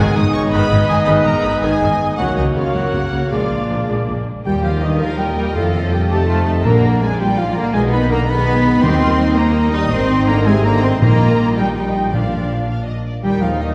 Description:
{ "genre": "cinematic, heroic adventure film score", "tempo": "109 BPM (dotted quarters)", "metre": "12/8", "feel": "straight", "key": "Eb major from 4.5 s", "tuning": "A4 = 439 Hz", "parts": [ { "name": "rich symphonic violin section", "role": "melody", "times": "0.0-13.7 s", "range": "Bb4 to D#6", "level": "-31 LUFS", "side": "equal", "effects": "none" }, { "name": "mellow flute section", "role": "second line", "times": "0.0-13.7 s", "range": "Eb5 to Eb6", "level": "-30 LUFS", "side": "equal", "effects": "none" }, { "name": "rich symphonic violin section", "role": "second line", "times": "0.0-13.7 s", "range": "A#3 to Eb6", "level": "-31 LUFS", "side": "equal", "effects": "none" }, { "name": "warm clarinet", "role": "second line", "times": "0.0-13.7 s", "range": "Eb4 to Eb5", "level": "-30 LUFS", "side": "equal", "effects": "none" }, { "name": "warm oboe", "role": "second line", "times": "0.0-13.7 s", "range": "D#4 to Eb6", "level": "-29 LUFS", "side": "equal", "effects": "none" }, { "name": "rich symphonic viola section", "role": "accompaniment", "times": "0.0-13.7 s", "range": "C#3 to Bb4", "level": "-27 LUFS", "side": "equal", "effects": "none" }, { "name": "mellow French horn section", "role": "sustained chords", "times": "0.0-13.7 s", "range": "G2 to G#4", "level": "-27 LUFS", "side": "equal", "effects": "none" }, { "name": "concert harp", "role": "arpeggios", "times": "0.0-13.7 s", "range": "F2 to A#5", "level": "-28 LUFS", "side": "equal", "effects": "none" }, { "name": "bright trumpet", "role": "stabs", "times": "0.0-4.3 s", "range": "C#5 to D#5", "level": "-25 LUFS", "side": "equal", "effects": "none" }, { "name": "rich symphonic cello section", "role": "bass", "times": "0.0-13.7 s", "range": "G#2 to Eb4", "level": "-22 LUFS", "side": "equal", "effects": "none" }, { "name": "rich symphonic double bass section", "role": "bass", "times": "0.0-13.7 s", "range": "G#1 to F2", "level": "-22 LUFS", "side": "equal", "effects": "none" }, { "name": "timpani", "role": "percussion", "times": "6.7-12.6 s", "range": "Bb2 to Eb3", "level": "-23 LUFS", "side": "equal", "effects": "none" } ], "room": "wet scoring stage reverb, RT60 1.7 s", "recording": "heard from further back in the room", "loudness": "-16 LUFS", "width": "mono", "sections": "0.0-4.5 A section; 4.5-13.7 B section", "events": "none", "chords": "0.0 G#m; 2.2 F#/C#; 3.3 A#7; 4.5 Eb; 5.6 F7; 6.6 Bb; 7.7 Abm/Cb; 8.8 Eb; 9.9 Ab; 11.0 Eb/Bb; 12.1 Bb; 13.2 Eb" }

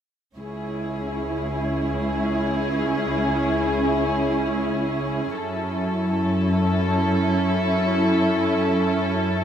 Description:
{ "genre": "cinematic", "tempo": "free time", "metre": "none", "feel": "none", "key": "C# minor", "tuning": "A4 = 440 Hz", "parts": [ { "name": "warm studio violin section", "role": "melody", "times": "0.4-9.4 s", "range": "G#4 to A4", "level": "-27 LUFS", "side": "left 2 dB", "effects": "none" }, { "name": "dark symphonic viola section", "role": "accompaniment", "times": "0.4-9.4 s", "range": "C#4 to E4", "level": "-24 LUFS", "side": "right 1 dB", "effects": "none" }, { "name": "dark studio cello section", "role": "bass", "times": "0.4-9.4 s", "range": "C#2 to F#2", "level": "-25 LUFS", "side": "equal", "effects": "none" } ], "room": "wet cathedral reverb, RT60 5.2 s", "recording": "in a vast, echoing space", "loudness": "-20 LUFS", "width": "side -9 dB against mid", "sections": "0.4-9.4 A section", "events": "none", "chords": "0.4 C#m; 5.4 F#m7" }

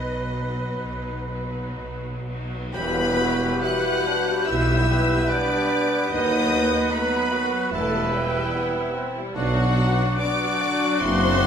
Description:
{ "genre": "classical, slow romantic movement for symphony orchestra", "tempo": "60-76 BPM", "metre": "4/4", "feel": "rubato", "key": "E minor", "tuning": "A4 = 440 Hz", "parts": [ { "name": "rich symphonic violin section", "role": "melody", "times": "0.0-11.5 s", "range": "D#5 to F#6", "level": "-30 LUFS", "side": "left 2 dB", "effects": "none" }, { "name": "dark symphonic violin section", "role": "second line", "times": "0.0-11.5 s", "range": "F#4 to F#5", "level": "-31 LUFS", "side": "left 2 dB", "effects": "none" }, { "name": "mellow hollow silver concert flute", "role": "second line", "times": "0.0-11.5 s", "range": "B4 to G6", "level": "-32 LUFS", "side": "left 2 dB", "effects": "none" }, { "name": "warm oboe", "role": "second line", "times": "0.0-11.5 s", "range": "B4 to D5", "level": "-32 LUFS", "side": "right 2 dB", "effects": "none" }, { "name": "rich symphonic viola section", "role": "accompaniment", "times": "0.0-11.5 s", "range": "D3 to G4", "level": "-32 LUFS", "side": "equal", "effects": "none" }, { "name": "mellow French horn section", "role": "sustained chords", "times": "0.0-11.5 s", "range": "F#3 to F#4", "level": "-29 LUFS", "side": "left 3 dB", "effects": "none" }, { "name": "clear symphonic double bass section", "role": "bass", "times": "0.0-11.5 s", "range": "E1 to D#2", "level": "-30 LUFS", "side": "right 1 dB", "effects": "none" }, { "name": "rich symphonic cello section", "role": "bass", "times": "0.0-11.5 s", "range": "D#2 to B2", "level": "-30 LUFS", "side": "right 1 dB", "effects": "none" }, { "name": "clear bassoon", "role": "accompaniment", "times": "2.7-11.5 s", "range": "B3 to G4", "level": "-32 LUFS", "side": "equal", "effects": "none" }, { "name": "warm trombone section", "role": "sustained chords", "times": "2.7-11.5 s", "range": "E3 to D4", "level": "-33 LUFS", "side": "right 3 dB", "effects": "none" }, { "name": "clear trumpet", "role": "stabs", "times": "2.7-11.5 s", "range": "F#4 to B4", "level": "-30 LUFS", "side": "right 3 dB", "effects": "none" }, { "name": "warm tuba", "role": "bass", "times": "2.7-11.5 s", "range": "E1 to D#2", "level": "-30 LUFS", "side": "right 2 dB", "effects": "none" }, { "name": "tam-tam", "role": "percussion", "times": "2.7-6.1 s", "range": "none", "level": "-38 LUFS", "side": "left 2 dB", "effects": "none" } ], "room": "wet recital hall reverb, RT60 1.6 s", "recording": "minimal, uncompressed stereo recording", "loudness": "-20 LUFS", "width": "side -8 dB against mid", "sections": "0.0-2.7 A section; 2.7-11.5 B section", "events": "band accent 2.7-3.6", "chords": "0.0 B; 2.7 Em; 6.1 B7/D#; 7.7 Em; 9.3 Bm" }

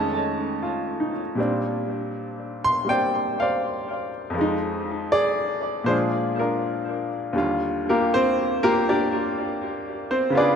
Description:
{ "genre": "solo jazz", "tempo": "80 BPM", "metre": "4/4", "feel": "swing 68% on 8ths", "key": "Bb major, Eb major from 7.3 s", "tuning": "A4 = 439 Hz", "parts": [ { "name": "bright upright piano", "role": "solo", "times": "0.0-10.6 s", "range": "Eb2 to C6", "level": "-21 LUFS", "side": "equal", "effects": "diffuse ambient delay" } ], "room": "wet plate reverb, RT60 2.3 s", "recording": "dreamy mix soaked in reverb", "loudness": "-22 LUFS", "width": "side -7 dB against mid", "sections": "0.0-7.3 A section; 7.3-10.6 B section", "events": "upright piano solo 7.3-10.6", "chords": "0.0 F7alt; 1.4 Bb69; 4.4 Fm7; 5.9 Bb7; 7.3 Ebmaj9" }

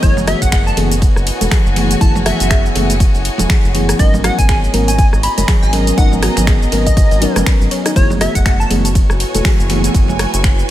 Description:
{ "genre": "deep house", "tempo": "121 BPM", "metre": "4/4", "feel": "swing 58% on 16ths", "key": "F# dorian", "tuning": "A4 = 439 Hz", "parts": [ { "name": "plucky unison lead", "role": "melody", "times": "0.0-8.7 s", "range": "C#5 to B5", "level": "-21 LUFS", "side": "equal", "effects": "cassette tape, digital delay" }, { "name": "deep dark ambient pad", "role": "sustained chords", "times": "0.0-10.7 s", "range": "A3 to D#5", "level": "-26 LUFS", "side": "right 1 dB", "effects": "chorus, built-in reverb, sidechain pumping" }, { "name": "soft round pluck", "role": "arpeggios", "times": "0.0-9.5 s", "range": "D#4 to C#5", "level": "-26 LUFS", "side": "left 4 dB", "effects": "chorus, sidechain pumping, digital delay" }, { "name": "mellow FM electric piano", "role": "stabs", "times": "0.0-9.9 s", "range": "E3 to A#4", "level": "-20 LUFS", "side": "equal", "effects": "chorus, sidechain pumping, digital delay" }, { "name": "round analog bass", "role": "bass", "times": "0.0-10.6 s", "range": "E1 to G#1", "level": "-18 LUFS", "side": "equal", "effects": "sidechain pumping" }, { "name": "breakbeat sampler-style drum kit", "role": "drums", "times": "0.0-10.6 s", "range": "hi-hat, ride cymbal, snare drum", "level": "-31 LUFS", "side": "right 3 dB", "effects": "none" }, { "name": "electronic kick drum", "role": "drums", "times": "0.0-10.6 s", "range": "none", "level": "-13 LUFS", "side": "equal", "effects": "none" }, { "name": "house drum kit", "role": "drums", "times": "0.0-10.7 s", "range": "cabasa, finger snaps, hi-hat, rim click", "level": "-21 LUFS", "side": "equal", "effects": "none" }, { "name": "rich symphonic string section", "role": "texture", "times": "0.0-10.7 s", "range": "F#4 to A#5", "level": "-24 LUFS", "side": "left 1 dB", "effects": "sidechain pumping" }, { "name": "congas", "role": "percussion", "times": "0.2-10.2 s", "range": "none", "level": "-23 LUFS", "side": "right 4 dB", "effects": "none" } ], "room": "digital ambience", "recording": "none", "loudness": "-11 LUFS", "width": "side -13 dB against mid", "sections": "0.0-10.7 A section", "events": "none", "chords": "0.0 F#m11; 4.0 G#m11; 8.0 F#m11" }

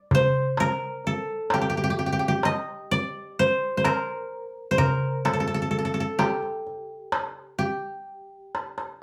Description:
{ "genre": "Turkish makam ensemble", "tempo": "128 BPM (eighths)", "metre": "10/8", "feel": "straight", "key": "G makam nihavent", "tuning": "A4 = 440 Hz", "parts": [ { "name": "koto", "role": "melody", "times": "0.0-9.0 s", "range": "G4 to Eb5", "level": "-27 LUFS", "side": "equal", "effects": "none" }, { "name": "darbuka", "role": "percussion", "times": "0.1-9.0 s", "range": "none", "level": "-28 LUFS", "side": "equal", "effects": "none" } ], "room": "wet studio reverb, RT60 0.6 s", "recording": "heard from further back in the room", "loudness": "-26 LUFS", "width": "mono", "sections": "0.0-9.0 A section", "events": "drum fill 8.5-9.0", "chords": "none" }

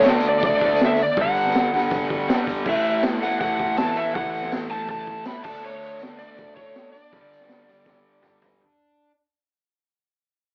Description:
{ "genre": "garage rock duo or trio", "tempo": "161 BPM", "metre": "4/4", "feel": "straight", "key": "unclear", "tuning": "A4 = 441 Hz", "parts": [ { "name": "overdriven slide guitar", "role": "melody", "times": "0.0-8.4 s", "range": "C#5 to B5", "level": "-25 LUFS", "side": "equal", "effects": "none" }, { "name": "fuzz guitar", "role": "riff", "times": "0.0-9.1 s", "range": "G2 to D4", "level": "-28 LUFS", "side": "equal", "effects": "distortion" }, { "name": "tambourine", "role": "percussion", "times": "0.0-8.5 s", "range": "none", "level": "-52 LUFS", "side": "equal", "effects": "none" }, { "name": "raw garage drum kit", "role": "drums", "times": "0.1-8.5 s", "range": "crash cymbal, hi-hat, kick drum, snare drum, toms", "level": "-28 LUFS", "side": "equal", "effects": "none" } ], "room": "wet club reverb, RT60 0.6 s", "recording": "cassette tape, AM radio sound", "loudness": "-22 LUFS", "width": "mono", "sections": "0.0-8.6 A section", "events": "fade-out 0.0-8.6; drum fill 7.9-8.6", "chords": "0.0 D5; 1.2 G5; 2.7 A5; 5.5 D5; 7.1 G5" }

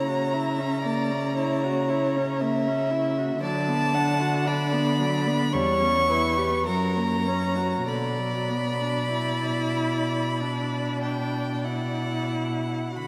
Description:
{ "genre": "classical, slow romantic movement for string quartet", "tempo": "42-59 BPM", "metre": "4/4", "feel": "rubato", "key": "B minor", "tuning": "A4 = 437 Hz", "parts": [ { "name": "clear violin", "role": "melody", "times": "0.0-13.1 s", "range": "F#5 to C#6", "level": "-32 LUFS", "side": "equal", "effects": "none" }, { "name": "rich violin", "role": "second line", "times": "0.0-13.1 s", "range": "A#4 to F#5", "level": "-32 LUFS", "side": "equal", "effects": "none" }, { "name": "warm viola", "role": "accompaniment", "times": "0.0-13.1 s", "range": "D3 to G4", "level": "-32 LUFS", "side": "equal", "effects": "none" }, { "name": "warm cello", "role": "bass", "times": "0.0-13.1 s", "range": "E2 to D3", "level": "-30 LUFS", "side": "equal", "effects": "none" } ], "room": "wet cathedral reverb, RT60 5.8 s", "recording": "in a vast, echoing space", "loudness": "-25 LUFS", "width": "mono", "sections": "0.0-13.0 A section", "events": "none", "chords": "0.0 F#7/C#; 3.4 Bm/D; 5.5 C#dim/E; 6.7 F#; 7.9 Bm" }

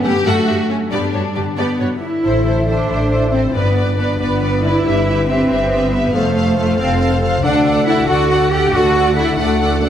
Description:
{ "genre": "cinematic", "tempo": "92 BPM (dotted quarters)", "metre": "6/8", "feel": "straight", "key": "unclear", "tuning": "A4 = 442 Hz", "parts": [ { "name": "rich studio violin section", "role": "melody", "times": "0.0-9.9 s", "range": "C5 to F#5", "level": "-24 LUFS", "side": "left 2 dB", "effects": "none" }, { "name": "rich symphonic violin section", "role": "second line", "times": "0.0-9.9 s", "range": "C#4 to D5", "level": "-25 LUFS", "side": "left 3 dB", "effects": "none" }, { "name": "rich symphonic viola section", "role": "accompaniment", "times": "0.0-9.9 s", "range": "A3 to B4", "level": "-24 LUFS", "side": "equal", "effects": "none" }, { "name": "concert harp", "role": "arpeggios", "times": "0.0-9.9 s", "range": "F2 to B4", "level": "-24 LUFS", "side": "left 5 dB", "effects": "none" }, { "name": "rich symphonic double bass section", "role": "bass", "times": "0.0-9.9 s", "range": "F1 to G2", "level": "-20 LUFS", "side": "right 2 dB", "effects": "none" }, { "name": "warm symphonic cello section", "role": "bass", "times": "0.0-9.9 s", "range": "G3 to G4", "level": "-19 LUFS", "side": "right 2 dB", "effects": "none" }, { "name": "dark French horn section", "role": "sustained chords", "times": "1.6-9.9 s", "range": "A3 to G4", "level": "-22 LUFS", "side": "left 1 dB", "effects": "none" }, { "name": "hollow flute section", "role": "second line", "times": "2.2-9.9 s", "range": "D5 to F#5", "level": "-26 LUFS", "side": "left 2 dB", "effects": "none" }, { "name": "mellow clarinet", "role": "second line", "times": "2.2-9.9 s", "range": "A4 to C5", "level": "-24 LUFS", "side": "equal", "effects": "none" } ], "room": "moderate scoring stage reverb, RT60 1.8 s", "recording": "none", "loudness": "-13 LUFS", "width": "side -10 dB against mid", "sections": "0.0-2.2 A section; 2.2-9.9 B section", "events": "none", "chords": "0.0 F#m/G; 0.9 G; 2.2 Am; 3.5 G; 4.9 Em/G; 6.2 F; 7.4 D" }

